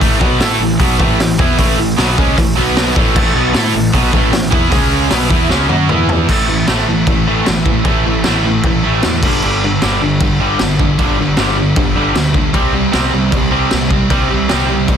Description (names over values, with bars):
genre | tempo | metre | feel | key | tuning
punk rock | 153 BPM | 4/4 | straight | unclear | A4 = 440 Hz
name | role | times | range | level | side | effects
cranked stack guitar | riff | 0.0-15.0 s | G2 to A4 | -20 LUFS | equal | overdrive
overdriven electric guitar | riff | 0.0-15.0 s | G2 to A4 | -19 LUFS | left 14 dB | none
tight distorted guitar | riff | 0.0-15.0 s | G2 to A4 | -17 LUFS | right 13 dB | distortion
fuzz picked electric bass | bass | 0.0-15.0 s | G1 to A2 | -19 LUFS | equal | overdrive
raw garage drum kit | drums | 0.0-15.0 s | crash cymbal, hi-hat, kick drum, snare drum, toms | -15 LUFS | equal | none
room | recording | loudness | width
little or no reverb | dense, heavily limited modern master | -11 LUFS | side -8 dB against mid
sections
0.0-6.3 A section; 6.3-15.0 B section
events
drum fill 5.5-6.3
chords
0.0 A; 2.6 B5; 3.0 A5; 4.7 C#5; 5.1 E69/B; 5.9 E5; 6.3 A5; 9.2 G5; 12.5 C5